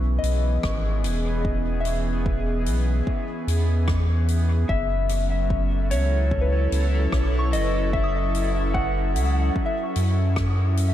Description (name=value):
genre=ambient dub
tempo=74 BPM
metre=4/4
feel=straight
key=F# dorian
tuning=A4 = 440 Hz
part: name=airy breathy pad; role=sustained chords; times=0.0-10.9 s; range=E3 to A4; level=-28 LUFS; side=equal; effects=chorus
part: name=soft synth bell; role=arpeggios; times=0.0-10.9 s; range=B4 to D#6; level=-33 LUFS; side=left 2 dB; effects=chorus, dub echo
part: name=warm sub bass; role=bass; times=0.0-10.9 s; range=E1 to F#2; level=-22 LUFS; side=equal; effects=none
part: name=soft-mallet drum kit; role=drums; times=0.2-10.9 s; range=hi-hat, rim click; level=-36 LUFS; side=left 2 dB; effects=dub echo
part: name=electronic kick drum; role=drums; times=0.6-10.5 s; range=none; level=-28 LUFS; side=equal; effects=none
part: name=electric slide guitar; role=melody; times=4.7-9.5 s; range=C#5 to F#5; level=-29 LUFS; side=left 2 dB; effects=dub echo
room=small room ambience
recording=none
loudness=-20 LUFS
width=side -12 dB against mid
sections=0.0-10.9 A section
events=none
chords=0.0 E6; 4.7 F#m7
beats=0.64 | 1.45 2.26 3.07 3.88 | 4.69 5.50 6.31 7.12 | 7.93 8.75 9.56 10.37